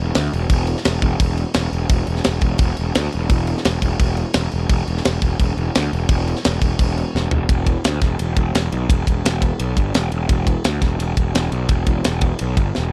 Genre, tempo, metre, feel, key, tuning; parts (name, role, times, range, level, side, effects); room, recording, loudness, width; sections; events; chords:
heavy metal; 172 BPM; 4/4; straight; E minor; A4 = 440 Hz
fuzz picked electric bass; bass; 0.0-12.9 s; E1 to D2; -22 LUFS; equal; overdrive
tight metal drum kit; drums; 0.1-12.8 s; crash cymbal, kick drum, ride cymbal, snare drum, toms; -22 LUFS; equal
little or no reverb; dark, warm production; -19 LUFS; mono
0.0-7.5 A section; 7.5-12.9 B section
drum fill 7.1-7.5, 12.8